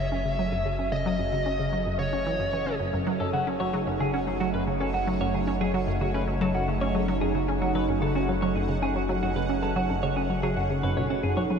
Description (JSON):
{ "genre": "ambient, sequencer-driven space music", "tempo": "112 BPM", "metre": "4/4", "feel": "straight", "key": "F# dorian", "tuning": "A4 = 440 Hz", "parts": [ { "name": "dark smooth lead guitar", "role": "melody", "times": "0.0-2.8 s", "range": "C#5 to E5", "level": "-32 LUFS", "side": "equal", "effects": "overdrive, shimmer reverb, tape echo" }, { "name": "phased analog pad", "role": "sustained chords", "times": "0.0-11.6 s", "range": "C#3 to F#4", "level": "-31 LUFS", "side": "right 2 dB", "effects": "phaser, chorus, shimmer reverb" }, { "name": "resonant blip pluck", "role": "riff", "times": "0.0-11.6 s", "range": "F#2 to C#4", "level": "-28 LUFS", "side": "equal", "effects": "chorus, shimmer reverb, tape echo" }, { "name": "warm sub bass", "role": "bass", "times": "0.0-11.6 s", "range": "F#1", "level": "-33 LUFS", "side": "equal", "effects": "none" }, { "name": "bubbling stepped-filter texture", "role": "texture", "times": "0.0-11.6 s", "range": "C#4 to D#6", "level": "-40 LUFS", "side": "right 2 dB", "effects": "chorus, built-in reverb, shimmer reverb" }, { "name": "twelve-string electric guitar", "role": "arpeggios", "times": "3.2-11.4 s", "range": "C#4 to C#5", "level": "-31 LUFS", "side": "moving between left 4 dB and right 4 dB", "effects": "auto-pan, shimmer reverb, tape echo" } ], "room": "wet huge ambient reverb, RT60 8.7 s", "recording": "dark, warm production", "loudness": "-24 LUFS", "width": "side -6 dB against mid", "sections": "0.0-11.6 A section", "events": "fade-in on analog synth pad 0.0-11.6; fade-in on synth texture 0.0-11.6", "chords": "0.0 F#m", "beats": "0.39 | 0.92 1.46 1.99 2.53 | 3.06 3.60 4.14 4.67 | 5.21 5.74 6.28 6.82 | 7.35 7.89 8.42 8.96 | 9.49 10.03 10.56 11.10" }